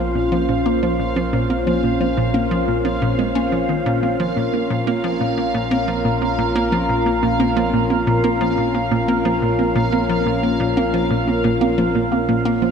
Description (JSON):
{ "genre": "ambient, sequencer-driven space music", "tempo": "89 BPM", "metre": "4/4", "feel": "straight", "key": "Bb minor", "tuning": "A4 = 439 Hz", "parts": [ { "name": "sweeping resonant pad", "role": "sustained chords", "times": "0.0-12.7 s", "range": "Bb3 to C5", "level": "-20 LUFS", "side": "left 1 dB", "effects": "chorus, phaser" }, { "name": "warbly dusty pluck", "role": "arpeggios", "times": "0.0-12.7 s", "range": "Bb3 to Db4", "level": "-24 LUFS", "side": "right 3 dB", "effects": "chorus, auto-pan, cassette tape, analog delay" }, { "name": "hollow square pluck", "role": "riff", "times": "0.0-12.7 s", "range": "Bb2 to Db4", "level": "-22 LUFS", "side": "equal", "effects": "chorus, analog delay" }, { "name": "analog drone", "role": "bass", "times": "0.0-12.7 s", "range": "Bb1", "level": "-29 LUFS", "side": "equal", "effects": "chorus" }, { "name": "bubbling stepped-filter texture", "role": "texture", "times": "0.0-12.7 s", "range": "F5", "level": "-29 LUFS", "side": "right 3 dB", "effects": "chorus, built-in reverb" } ], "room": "wet lush hall reverb, RT60 2.5 s", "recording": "dreamy mix soaked in reverb", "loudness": "-16 LUFS", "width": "side -7 dB against mid", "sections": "0.0-12.7 A section", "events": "fade-in on synth texture 0.0-12.7; filter sweep on synth arpeggio sound 0.0-12.7", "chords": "0.0 Bbmadd9" }